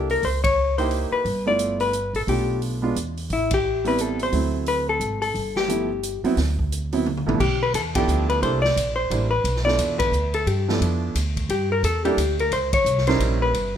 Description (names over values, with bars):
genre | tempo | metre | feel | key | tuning
jazz, small-group swing and bop | 176 BPM | 3/4 | swing 62% on 8ths | G mixolydian | A4 = 436 Hz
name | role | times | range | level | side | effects
vintage hollow-body jazz guitar | melody | 0.0-13.8 s | E4 to D5 | -23 LUFS | left 3 dB | none
warm upright piano | accompaniment | 0.0-13.5 s | G2 to C5 | -26 LUFS | right 4 dB | none
upright bass | bass | 0.0-13.8 s | G1 to G2 | -25 LUFS | equal | none
swinging big-band drum kit | drums | 0.1-13.6 s | crash cymbal, hi-hat, kick drum, ride cymbal, snare drum, toms | -30 LUFS | equal | none
room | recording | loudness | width
light reverb | none | -20 LUFS | side -9 dB against mid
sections
0.0-7.4 A section; 7.4-13.8 A section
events
band accent 0.4, 3.5, 7.9, 10.0, 12.7; drum fill 7.1-7.4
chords
0.2 C#dim7; 1.3 G13; 2.3 Bm7b5; 3.0 N.C.; 3.3 Am7; 4.3 D9; 5.3 G13; 6.4 Dsus2; 7.4 G13; 8.4 C13; 9.4 G13; 11.5 Gm6; 12.5 C#dim7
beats
| 0.23 0.57 0.91 | 1.25 1.59 1.94 | 2.28 2.62 2.96 | 3.30 3.64 3.98 | 4.33 4.67 5.01 | 5.35 5.69 6.03 | 6.37 6.71 7.06 | 7.40 7.74 8.08 | 8.42 8.76 9.10 | 9.44 9.78 10.12 | 10.47 10.81 11.15 | 11.49 11.83 12.17 | 12.51 12.85 13.19 | 13.53